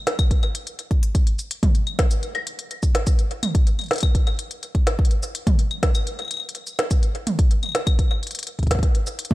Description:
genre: IDM.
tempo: 125 BPM.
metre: 4/4.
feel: straight.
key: none.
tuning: none.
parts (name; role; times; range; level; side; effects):
organic electronic drum kit; drums; 0.1-9.3 s; claves, hi-hat, shaker, snare drum, toms; -25 LUFS; equal; studio reverb, tape echo.
electronic kick drum; drums; 0.2-9.3 s; none; -18 LUFS; equal; studio reverb.
room: little or no reverb.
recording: echo-heavy mix.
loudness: -19 LUFS.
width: side -18 dB against mid.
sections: 0.0-9.3 A section.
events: none.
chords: none.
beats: | 0.31 0.79 1.27 1.75 | 2.23 2.71 3.19 3.67 | 4.15 4.63 5.11 5.59 | 6.07 6.55 7.03 7.51 | 7.99 8.47 8.95.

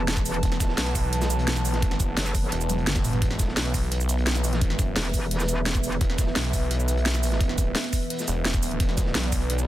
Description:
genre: dark technical drum and bass.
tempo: 172 BPM.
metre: 4/4.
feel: straight.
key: unclear.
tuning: A4 = 440 Hz.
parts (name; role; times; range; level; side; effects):
dark analog pad; sustained chords; 0.0-9.7 s; E3 to A5; -30 LUFS; right 1 dB; chorus, sidechain pumping.
metallic wobble bass; bass; 0.0-2.5, 5.0-6.0 s; E1 to F#1; -27 LUFS; equal; chorus.
crunchy breakbeat drum kit; drums; 0.1-9.6 s; hi-hat, snare drum; -37 LUFS; equal; high-pass filter on hats, high-pass filter on snare, high-pass filter on room.
drum and bass drum kit; drums; 0.1-9.7 s; cabasa, hi-hat, snare drum, toms; -28 LUFS; equal; overdrive.
electronic kick drum; drums; 0.2-9.4 s; none; -25 LUFS; equal; none.
snarling distorted saw bass; bass; 0.4-9.7 s; E1 to B1; -26 LUFS; equal; distortion, overdrive, sidechain pumping.
room: light reverb, digital ambience.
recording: dense, heavily limited modern master.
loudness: -22 LUFS.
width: side -14 dB against mid.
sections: 0.0-9.7 A section.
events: drum fill 2.7-3.2.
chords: 0.0 E5.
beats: 0.08 | 0.43 0.78 1.13 1.48 | 1.82 2.17 2.52 2.87 | 3.22 3.57 3.92 4.27 | 4.62 4.96 5.31 5.66 | 6.01 6.36 6.71 7.06 | 7.41 7.75 8.10 8.45 | 8.80 9.15 9.50.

